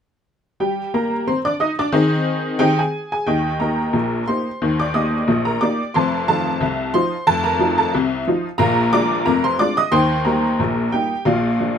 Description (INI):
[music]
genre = ragtime piano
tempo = 90 BPM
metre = 2/4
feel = swing 55% on 16ths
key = Eb major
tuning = A4 = 440 Hz
[part]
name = honky-tonk upright piano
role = solo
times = 0.6-11.8 s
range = F1 to Eb6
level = -16 LUFS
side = equal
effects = none
[sound]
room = light reverb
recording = none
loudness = -17 LUFS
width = side -8 dB against mid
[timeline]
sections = 0.6-3.3 A section; 3.3-11.8 B section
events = none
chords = 0.6 Eb; 1.9 Ab/Eb; 3.3 Eb; 5.9 F7; 8.6 Bb7; 9.9 Eb; 11.3 Bb